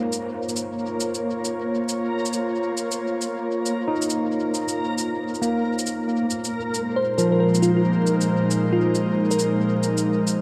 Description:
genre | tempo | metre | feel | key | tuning
future garage | 136 BPM | 4/4 | swing 64% on 16ths | Bb minor | A4 = 440 Hz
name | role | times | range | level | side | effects
barky tine electric piano | accompaniment | 0.0-10.4 s | F3 to Eb4 | -28 LUFS | equal | tape echo
airy breathy pad | sustained chords | 0.0-10.4 s | Bb2 to Db5 | -27 LUFS | equal | chorus
backwards swelling texture | texture | 0.0-10.4 s | Bb3 to Bb4 | -32 LUFS | equal | built-in reverb
shaker | drums | 0.1-10.4 s | none | -34 LUFS | equal | dub echo
bell-like FM electric piano | melody | 7.0-9.8 s | F4 to C5 | -28 LUFS | equal | chorus, dub echo
room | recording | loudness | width
moderate plate reverb, RT60 1.9 s | echo-heavy mix, vinyl crackle | -23 LUFS | mono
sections
0.0-10.4 A section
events
none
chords
0.0 Bbm; 6.3 Abadd9/Bb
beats
0.12 0.56 | 1.00 1.45 1.89 2.33 | 2.77 3.21 3.65 4.09 | 4.54 4.98 5.42 5.86 | 6.30 6.74 7.18 7.62 | 8.06 8.51 8.95 9.39 | 9.83 10.27

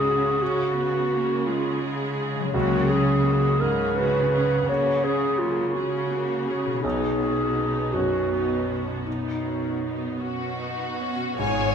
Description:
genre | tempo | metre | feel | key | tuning
cinematic, emotional film score for orchestra | 50-57 BPM (dotted quarters) | 6/8 | rubato | unclear | A4 = 440 Hz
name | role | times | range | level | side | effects
mellow clarinet | second line | 0.0-11.7 s | D#4 to C#5 | -25 LUFS | equal | none
clear grand piano | accompaniment | 0.0-11.7 s | B1 to G#2 | -32 LUFS | right 2 dB | none
rich symphonic viola section | accompaniment | 0.0-11.7 s | F#3 to G#4 | -31 LUFS | right 2 dB | none
concert harp | arpeggios | 0.0-11.7 s | G#2 to D#4 | -31 LUFS | left 4 dB | none
rich studio cello section | bass | 0.0-11.7 s | G#2 to C#3 | -28 LUFS | right 2 dB | none
warm symphonic violin section | second line | 10.2-11.7 s | F#4 to C#5 | -28 LUFS | left 3 dB | none
dark symphonic violin section | melody | 11.4-11.7 s | G#5 | -32 LUFS | left 2 dB | none
mellow hollow silver concert flute | second line | 11.4-11.7 s | G#5 | -32 LUFS | left 5 dB | none
rich symphonic double bass section | bass | 11.4-11.7 s | G#1 | -30 LUFS | right 6 dB | none
room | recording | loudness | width
moderate scoring stage reverb, RT60 1.7 s | minimal, uncompressed stereo recording | -22 LUFS | side -7 dB against mid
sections
0.0-11.4 A section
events
none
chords
0.0 C#sus4; 6.8 Badd9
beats
| 0.41 1.48 | 2.54 3.61 | 4.69 5.76 | 6.84 7.94 | 9.06 10.21 | 11.38

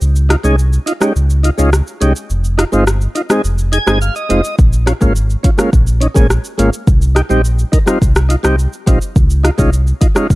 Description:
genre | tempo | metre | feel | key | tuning
dancehall | 105 BPM | 4/4 | straight | unclear | A4 = 439 Hz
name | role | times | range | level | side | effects
sub bass with octave | bass | 0.0-10.4 s | F1 to Db2 | -13 LUFS | equal | none
afro-pop drum kit | drums | 0.0-10.4 s | hi-hat, kick drum, rim click, shaker | -13 LUFS | equal | none
tonewheel organ | accompaniment | 0.3-10.3 s | G3 to Ab5 | -16 LUFS | equal | slow rotary speaker
room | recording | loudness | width
digital ambience | dry, gritty hardware recording | -11 LUFS | side -19 dB against mid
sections
0.0-10.4 A section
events
break 0.0-4.6; tonewheel organ fill 3.4-4.6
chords
0.0 Dbadd9; 2.3 Fm7; 4.6 Bbm7; 6.9 Cm; 9.2 Dbadd9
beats
| 0.02 0.59 1.16 1.73 | 2.30 2.87 3.44 4.02 | 4.59 5.16 5.73 6.30 | 6.87 7.44 8.02 8.59 | 9.16 9.73 10.30

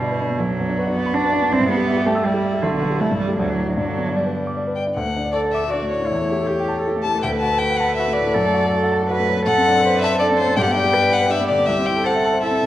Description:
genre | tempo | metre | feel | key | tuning
quick classical-period movement for piano trio | 160 BPM | 3/4 | straight | G major, D major from 5.0 s, G major from 9.5 s | A4 = 440 Hz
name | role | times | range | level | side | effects
rich violin | melody | 0.0-12.7 s | D4 to A5 | -23 LUFS | left 4 dB | none
rich cello | second line | 0.0-12.7 s | B2 to B4 | -21 LUFS | right 3 dB | none
warm grand piano | accompaniment | 0.0-12.7 s | B1 to E6 | -21 LUFS | left 1 dB | none
room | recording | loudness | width
wet recital hall reverb, RT60 1.4 s | worn, warbling old tape, cassette tape, warbly pitch drift | -17 LUFS | side -13 dB against mid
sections
0.0-5.0 A section; 5.0-12.7 B section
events
none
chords
0.4 Bm; 1.5 C; 2.6 G/B; 3.0 Am7/C; 3.4 D; 3.8 G; 5.0 D; 6.1 A7/E; 7.2 D; 8.3 D/F#; 9.5 D7/F#; 10.6 G; 11.7 Am/C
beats
0.03 | 0.40 0.77 1.15 | 1.52 1.89 2.26 | 2.63 3.01 3.39 | 3.79 4.18 4.57 | 4.96 5.34 5.71 | 6.09 6.47 6.84 | 7.22 7.59 7.96 | 8.34 8.71 9.09 | 9.46 9.83 10.20 | 10.56 10.93 11.30 | 11.67 12.04 12.42

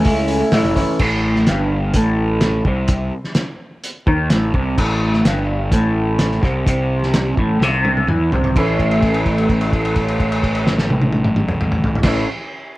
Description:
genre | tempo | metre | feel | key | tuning
psychedelic rock | 127 BPM | 4/4 | straight | A mixolydian | A4 = 439 Hz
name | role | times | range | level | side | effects
electric guitar through a small old amp | riff | 0.0-12.3 s | G2 to E4 | -18 LUFS | equal | phaser
fuzz picked electric bass | bass | 0.0-12.2 s | F#1 to A2 | -20 LUFS | equal | overdrive
cloth-damped thuddy drum kit | drums | 0.0-12.1 s | crash cymbal, hi-hat, kick drum, snare drum, toms | -19 LUFS | equal | none
room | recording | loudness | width
light reverb | vinyl crackle | -15 LUFS | side -18 dB against mid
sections
0.0-1.0 A section; 1.0-8.5 B section; 8.5-12.3 C section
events
drum fill 7.6-8.5; held note 8.5-12.0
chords
0.0 F#m; 1.0 A5; 8.5 A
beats
0.06 0.53 | 1.00 1.48 1.95 2.42 | 2.89 3.36 3.83 4.30 | 4.78 5.25 5.72 6.19 | 6.66 7.13 7.60 8.08 | 8.55 9.02 9.49 9.96 | 10.44 10.91 11.38 11.85

